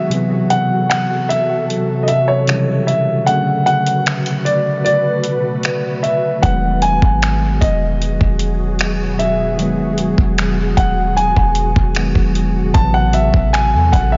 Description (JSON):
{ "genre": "contemporary R&B", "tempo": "76 BPM", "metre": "4/4", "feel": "straight", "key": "E major", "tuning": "A4 = 441 Hz", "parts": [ { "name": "warm grand piano", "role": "melody", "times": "0.0-14.2 s", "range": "C#5 to A5", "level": "-20 LUFS", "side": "equal", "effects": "diffuse ambient delay" }, { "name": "bell-like tine electric piano", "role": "accompaniment", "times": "0.0-14.2 s", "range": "C3 to B3", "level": "-22 LUFS", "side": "equal", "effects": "none" }, { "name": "ethereal airy pad", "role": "sustained chords", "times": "0.0-14.2 s", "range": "B2 to B4", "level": "-25 LUFS", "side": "equal", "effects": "ensemble chorus, built-in reverb" }, { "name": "dusty soul sampler-style drum kit", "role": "drums", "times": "0.1-14.1 s", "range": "finger snaps, hi-hat, kick drum", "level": "-22 LUFS", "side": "equal", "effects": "none" }, { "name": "clean 808-style bass", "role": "bass", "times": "6.4-14.2 s", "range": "D#1 to E2", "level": "-20 LUFS", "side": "equal", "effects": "none" } ], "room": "moderate plate reverb, RT60 3.2 s", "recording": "dreamy mix soaked in reverb, nothing above 7.5 kHz", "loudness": "-16 LUFS", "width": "mono", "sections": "0.0-14.2 A section", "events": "break 0.0-6.4", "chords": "0.1 Am6; 2.5 A#dim7; 3.3 Bm7; 6.4 Emaj9; 12.7 Am6" }